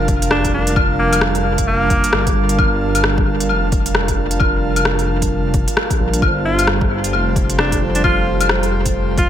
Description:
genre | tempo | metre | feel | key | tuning
future garage | 132 BPM | 4/4 | swing 60% on 16ths | G minor | A4 = 440 Hz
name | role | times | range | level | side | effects
mellow tine electric piano | accompaniment | 0.0-9.3 s | G3 to C5 | -23 LUFS | right 3 dB | medium stereo tremolo, sidechain pumping, low-pass filter, analog delay
airy breathy pad | sustained chords | 0.0-9.3 s | G3 to A5 | -25 LUFS | right 1 dB | chorus, sidechain pumping
dark detuned saw bass | bass | 0.0-9.3 s | F1 to Bb1 | -20 LUFS | left 1 dB | sidechain pumping
electronic kick drum | drums | 0.1-9.3 s | none | -20 LUFS | left 1 dB | overdrive
garage drum kit | drums | 0.1-9.3 s | claves, hi-hat, rim click | -20 LUFS | left 2 dB | dub echo
clear alto saxophone | melody | 0.3-2.3, 6.5-9.3 s | Bb3 to F4 | -21 LUFS | equal | analog delay
room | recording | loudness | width
moderate spring reverb, RT60 1.9 s, digital ambience | echo-heavy mix | -14 LUFS | side -10 dB against mid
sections
0.0-9.3 A section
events
filter sweep on tine electric piano 0.0-9.3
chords
0.0 Gm7; 6.2 F

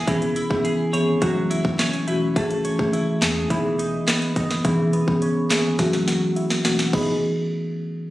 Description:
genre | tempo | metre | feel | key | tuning
dancehall | 105 BPM | 4/4 | straight | E major | A4 = 440 Hz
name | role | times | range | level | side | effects
twelve-string electric guitar | arpeggios | 0.0-7.2 s | E3 to C#5 | -26 LUFS | right 1 dB | lush chorus, low-pass filter
sub bass with octave | bass | 0.0-7.2 s | E1 to E2 | -35 LUFS | right 1 dB | none
marimba with medium mallets | accompaniment | 0.1-7.1 s | E3 to G#4 | -22 LUFS | left 1 dB | low-pass filter
island pop drum kit | drums | 0.1-7.1 s | crash cymbal, handclaps, hi-hat, kick drum, snare drum | -24 LUFS | equal | none
room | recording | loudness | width
light reverb, digital ambience | recorded on a phone in the room, studio reverb, compression | -19 LUFS | side -15 dB against mid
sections
0.0-6.9 A section; 6.9-8.1 B section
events
filter sweep 0.0-6.9; drum fill 5.8-6.9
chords
0.1 C#m7/E; 1.2 F#m7; 2.4 Amaj7; 3.5 Emaj7; 4.6 C#m7/E; 5.8 F#m7; 6.9 Emaj7

